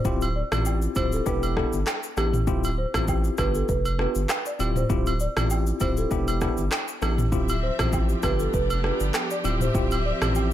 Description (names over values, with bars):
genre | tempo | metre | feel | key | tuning
afrobeats | 99 BPM | 4/4 | swing 55% on 16ths | D dorian | A4 = 440 Hz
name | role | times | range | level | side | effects
folk marimba with soft mallets | melody | 0.0-10.2 s | G4 to D5 | -31 LUFS | right 1 dB | tape echo
bell-like tine electric piano | accompaniment | 0.0-10.5 s | B3 to G4 | -30 LUFS | left 3 dB | fast stereo tremolo
saturated sub bass | bass | 0.0-10.5 s | D1 to A1 | -26 LUFS | equal | none
afro-pop drum kit | drums | 0.0-10.5 s | handclaps, kick drum, rim click, shaker, toms | -27 LUFS | equal | none
agogo bells and woodblock | percussion | 0.2-10.5 s | none | -33 LUFS | right 4 dB | none
warm symphonic string section | sustained chords | 7.3-10.5 s | F3 to E5 | -31 LUFS | right 1 dB | none
room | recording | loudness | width
light reverb | none | -22 LUFS | side -12 dB against mid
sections
0.0-10.5 A section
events
none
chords
0.0 Dm11; 1.3 Em7; 2.5 Dm11; 3.4 G7; 4.6 Dm11; 6.1 Em7; 7.3 Dm11; 8.2 G7; 9.4 Dm11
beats
| 0.05 0.66 1.26 1.87 | 2.47 3.08 3.69 4.29 | 4.90 5.50 6.11 6.72 | 7.32 7.93 8.54 9.14 | 9.75 10.35